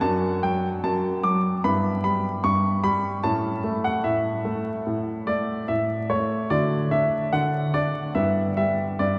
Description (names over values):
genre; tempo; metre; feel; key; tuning
classical-period piano sonatina; 73 BPM; 4/4; rubato; D major; A4 = 441 Hz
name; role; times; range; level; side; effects
clear baby grand piano; solo; 0.0-9.2 s; F#2 to D6; -24 LUFS; equal; none
room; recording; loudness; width
wet cathedral reverb, RT60 7.2 s; recorded in a church or concert hall, vinyl crackle; -24 LUFS; mono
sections
0.0-9.2 A section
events
none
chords
0.0 D/F#; 1.6 Em/G; 3.2 A; 6.5 D; 8.2 Em/G